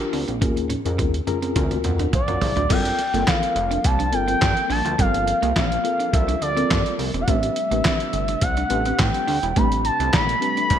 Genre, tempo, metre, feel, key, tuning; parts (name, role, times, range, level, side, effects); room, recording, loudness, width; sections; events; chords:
early-eighties boogie funk; 105 BPM; 4/4; straight; G dorian; A4 = 437 Hz
mellow tine electric piano; accompaniment; 0.0-10.8 s; C4 to Bb5; -28 LUFS; left 4 dB; medium stereo tremolo
dusty soul sampler-style drum kit; drums; 0.0-10.8 s; crash cymbal, handclaps, hi-hat, kick drum, snare drum, toms; -23 LUFS; equal; overdrive, gated reverb
clean electric guitar; riff; 0.1-10.7 s; G3 to E#4; -30 LUFS; right 9 dB; tube saturation, lush chorus
chorused synth bass; bass; 0.1-10.8 s; E1 to A2; -25 LUFS; equal
expressive portamento lead; melody; 2.2-10.8 s; D5 to B5; -22 LUFS; equal; chorus, digital delay
soft string machine; sustained chords; 3.0-10.8 s; C3 to Bb3; -31 LUFS; equal; phaser, ensemble chorus
light reverb, digital ambience; bright 1980s-style digital production; -18 LUFS; side -9 dB against mid
0.0-2.7 A section; 2.7-10.8 B section
drum fill 0.4-2.7; tine electric piano fill 1.0-2.7
0.4 Eb9sus4; 1.6 D7alt; 2.7 Gm11; 7.3 Am11